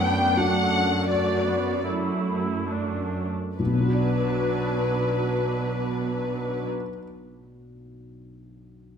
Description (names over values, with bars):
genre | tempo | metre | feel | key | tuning
cinematic, emotional film score for orchestra | 65-86 BPM | 3/4 | rubato | B minor | A4 = 438 Hz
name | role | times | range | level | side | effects
muted symphonic violin section | melody | 0.0-6.7 s | B4 to G5 | -27 LUFS | left 4 dB | none
dark baby grand piano | accompaniment | 0.0-9.0 s | B1 to D5 | -29 LUFS | left 2 dB | none
muted symphonic viola section | accompaniment | 0.0-6.7 s | F#3 to F#4 | -29 LUFS | right 2 dB | none
muted symphonic cello section | bass | 0.0-6.7 s | F#2 to B2 | -29 LUFS | right 3 dB | none
room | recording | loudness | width
moderate scoring stage reverb, RT60 1.7 s | none | -22 LUFS | side -7 dB against mid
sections
0.0-3.6 A section; 3.6-9.0 B section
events
slowing down 0.0-3.6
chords
0.0 D/F#; 3.6 Bm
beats
0.36 | 1.09 1.86 2.68 | 3.59 4.50 5.40 | 6.29 7.19 8.09